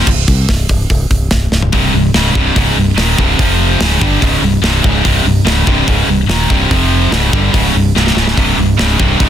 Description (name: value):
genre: heavy metal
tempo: 144 BPM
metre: 4/4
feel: straight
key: C minor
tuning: A4 = 440 Hz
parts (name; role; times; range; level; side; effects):
- high-gain distorted guitar; riff; 0.0-9.3 s; C2 to G3; -16 LUFS; right 12 dB; distortion
- scooped high-gain guitar; riff; 0.0-9.3 s; C2 to G3; -15 LUFS; left 10 dB; distortion
- scooped high-gain guitar; riff; 0.0-0.1, 8.4-9.3 s; C2 to Db3; -22 LUFS; right 1 dB; distortion
- growling fingered electric bass; bass; 0.0-9.3 s; C1 to C2; -15 LUFS; equal; overdrive
- tight metal drum kit; drums; 0.1-9.3 s; crash cymbal, hi-hat, kick drum, snare drum, toms; -15 LUFS; equal; none
room: small room ambience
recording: dense, heavily limited modern master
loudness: -9 LUFS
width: side -10 dB against mid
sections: 0.1-1.7 A section; 1.7-9.3 B section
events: drum fill 1.5, 8.0-8.4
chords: 0.1 N.C.; 1.7 Cm; 3.4 F5; 3.8 Cm; 6.7 F5; 7.1 C5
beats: | 0.07 0.48 0.90 1.31 | 1.73 2.14 2.55 2.97 | 3.38 3.80 4.21 4.63 | 5.04 5.46 5.87 6.29 | 6.71 7.12 7.54 7.95 | 8.37 8.79 9.20